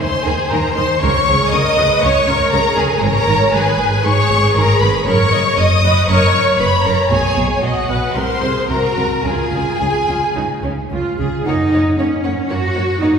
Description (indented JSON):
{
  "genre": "quick classical-period movement for string orchestra",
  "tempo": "106-121 BPM",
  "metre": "4/4",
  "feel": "rubato",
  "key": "F# major from 3.0 s",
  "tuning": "A4 = 440 Hz",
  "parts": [
    { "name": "warm studio violin section", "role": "melody", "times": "0.0-13.1 s", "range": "F#5 to D#6", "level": "-19 LUFS", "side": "left 3 dB", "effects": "none" },
    { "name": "rich studio violin section", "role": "second line", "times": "0.0-13.1 s", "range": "F#4 to D#5", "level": "-19 LUFS", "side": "left 1 dB", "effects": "none" },
    { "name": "rich symphonic viola section", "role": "accompaniment", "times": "0.0-13.1 s", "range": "A#3 to D#5", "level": "-21 LUFS", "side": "right 2 dB", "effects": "none" },
    { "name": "rich studio double bass section", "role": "bass", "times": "0.0-13.1 s", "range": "F#1 to F#2", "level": "-20 LUFS", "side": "right 1 dB", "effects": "none" },
    { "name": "rich symphonic cello section", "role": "bass", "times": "0.0-13.2 s", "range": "F#2 to F#4", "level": "-20 LUFS", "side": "right 1 dB", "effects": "none" }
  ],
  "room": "wet concert hall reverb, RT60 2.0 s",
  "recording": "recorded in a church or concert hall",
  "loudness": "-13 LUFS",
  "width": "side -6 dB against mid",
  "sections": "0.0-11.5 A section; 11.5-13.2 B section",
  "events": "none",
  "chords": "0.0 G#add9/D#; 1.0 C#5; 3.0 C#5/G#; 5.1 F#5; 7.1 B5; 8.2 G#9/B#; 9.2 C#; 11.5 F#"
}